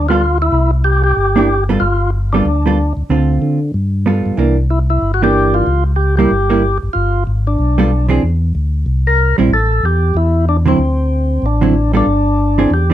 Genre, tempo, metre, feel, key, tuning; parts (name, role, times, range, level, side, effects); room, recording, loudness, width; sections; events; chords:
jazz; 187 BPM; 4/4; swing 61% on 8ths; G mixolydian; A4 = 440 Hz
percussive tonewheel organ; melody; 0.0-12.9 s; C4 to Bb4; -16 LUFS; left 1 dB; slow rotary speaker, plate reverb
mellow tonewheel organ; bass; 0.0-12.9 s; G1 to D3; -15 LUFS; equal; chorus vibrato, slow rotary speaker
hollow-body jazz guitar; accompaniment; 0.1-12.9 s; D3 to A4; -15 LUFS; right 3 dB
light reverb; dark, warm production; -12 LUFS; side -12 dB against mid
0.0-12.9 A section
0.0 G9; 0.5 C; 1.8 G9; 3.1 Dm7; 3.7 G9; 4.4 C9; 5.7 C#dim7; 6.9 G7; 8.2 Bbadd9; 9.5 A7(no3); 10.8 D7(no3); 12.1 G5